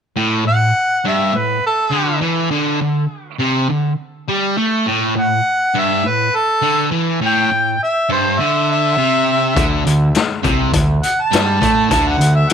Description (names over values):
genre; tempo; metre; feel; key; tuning
blues rock power trio and southern rock; 102 BPM; 4/4; straight; unclear; A4 = 442 Hz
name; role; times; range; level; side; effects
fuzz guitar; riff; 0.2-12.4 s; G2 to A3; -17 LUFS; equal; distortion
mellow harmonica; melody; 0.5-12.5 s; A4 to A5; -17 LUFS; equal; overdrive
growling picked electric bass; bass; 9.6-12.5 s; C2 to A2; -18 LUFS; right 1 dB; overdrive
raw garage drum kit; drums; 9.6-12.5 s; hi-hat, kick drum, snare drum; -18 LUFS; left 3 dB; none
room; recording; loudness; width
light reverb, studio ambience; 1960s-style stereo; -14 LUFS; side -7 dB against mid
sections
0.2-12.5 A section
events
none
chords
0.2 A5; 2.5 D5; 4.9 A5; 9.6 D7(no3)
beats
| 0.16 0.74 1.33 1.92 | 2.51 3.10 3.69 4.28 | 4.86 5.45 6.04 6.63 | 7.21 7.80 8.39 8.97 | 9.56 10.15 10.73 11.32 | 11.90 12.49